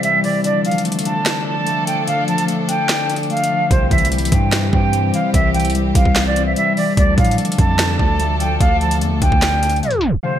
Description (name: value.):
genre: hip hop, trap.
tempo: 147 BPM.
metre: 4/4.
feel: half-time.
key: D minor.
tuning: A4 = 442 Hz.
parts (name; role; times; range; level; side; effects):
concert flute; melody; 0.0-10.4 s; C5 to A5; -19 LUFS; right 1 dB; low-pass filter, ping-pong delay.
concert harp; accompaniment; 0.0-10.4 s; C3 to D5; -20 LUFS; left 4 dB; low-pass filter.
warm chamber string section; sustained chords; 0.0-10.2 s; E3 to A4; -26 LUFS; right 2 dB; none.
trap drum kit; drums; 0.0-10.0 s; handclaps, hi-hat, kick drum, snare drum; -18 LUFS; right 1 dB; gated reverb.
hard-hitting 808-style bass; bass; 3.7-9.8 s; B1 to A2; -20 LUFS; right 1 dB; none.
room: light reverb, small room ambience.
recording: bright 1980s-style digital production, tape stop.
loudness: -14 LUFS.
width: side -10 dB against mid.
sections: 0.0-10.2 A section.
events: break 0.0-3.7; tape stop 9.8-10.2.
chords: 0.4 Dm; 3.7 C; 7.0 Dm.